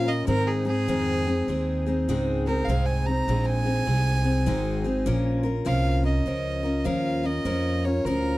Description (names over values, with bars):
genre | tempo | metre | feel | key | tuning
honky-tonk and classic country | 100 BPM | 4/4 | swing 64% on 8ths | unclear | A4 = 439 Hz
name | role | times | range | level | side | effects
clear fiddle | melody | 0.0-8.4 s | Ab4 to Bb5 | -30 LUFS | right 1 dB | none
picked steel-string acoustic guitar | accompaniment | 0.0-8.4 s | Ab2 to Bb4 | -26 LUFS | left 1 dB | none
upright bass | bass | 0.0-8.4 s | Ab1 to Bb2 | -26 LUFS | right 1 dB | none
room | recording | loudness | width
little or no reverb | dry, close 1970s-style studio recording | -22 LUFS | side -17 dB against mid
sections
0.0-8.4 A section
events
fiddle solo 0.0-8.4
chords
0.3 Ab; 5.1 Bbm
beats
| 0.27 0.87 1.47 2.07 | 2.67 3.27 3.87 4.46 | 5.06 5.66 6.26 6.86 | 7.46 8.05